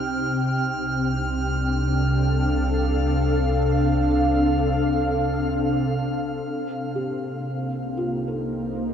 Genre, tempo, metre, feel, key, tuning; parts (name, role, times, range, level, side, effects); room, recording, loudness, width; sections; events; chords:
ambient; free time; A4 = 440 Hz
ethereal airy pad; sustained chords; 0.0-8.9 s; C3 to G5; -22 LUFS; equal; ensemble chorus, built-in reverb
deep rumbling drone; bass; 0.9-8.9 s; C2; -27 LUFS; equal; built-in reverb
drifting glass-harmonics texture; texture; 0.0-6.5 s; F6; -33 LUFS; right 2 dB; chorus, built-in reverb
felt-muted upright piano; arpeggios; 7.0-8.9 s; F4 to A4; -31 LUFS; equal; tape echo
wet huge ambient reverb, RT60 9.0 s; dark, warm production; -21 LUFS; side -8 dB against mid
0.0-6.5 A section; 6.5-8.9 B section
0.4 Dm7/C; 6.5 Cm7